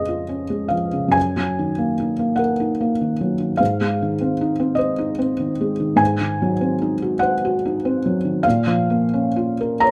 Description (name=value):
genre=classical, romantic nocturne for solo piano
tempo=41-51 BPM (dotted quarters)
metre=12/8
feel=rubato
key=unclear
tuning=A4 = 437 Hz
part: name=felt-muted upright piano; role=solo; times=0.0-9.9 s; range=F2 to Bb5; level=-20 LUFS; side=equal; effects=none
room=light reverb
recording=close, detailed microphones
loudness=-20 LUFS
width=mono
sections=0.0-9.9 A section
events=none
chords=0.0 Db/F; 1.2 Ebm/Gb; 3.6 Ab; 6.0 Ab7; 8.4 Bbm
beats=| 1.16 2.40 3.60 4.79 | 6.00 7.21 8.45 9.84